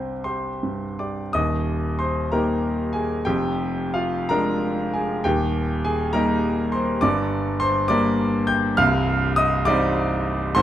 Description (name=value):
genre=classical, romantic character piece for solo piano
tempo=50-70 BPM (dotted quarters)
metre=6/8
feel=rubato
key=Eb major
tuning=A4 = 441 Hz
part: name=clear concert grand piano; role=solo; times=0.0-10.6 s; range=C1 to G6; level=-20 LUFS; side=equal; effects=none
room=moderate large studio reverb, RT60 0.8 s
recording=none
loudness=-20 LUFS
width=side -11 dB against mid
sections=0.0-1.3 A section; 1.3-10.6 B section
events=none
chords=0.0 C5; 1.3 Eb; 3.2 Ddim/F; 5.2 Eb; 7.0 Gm; 8.8 Cm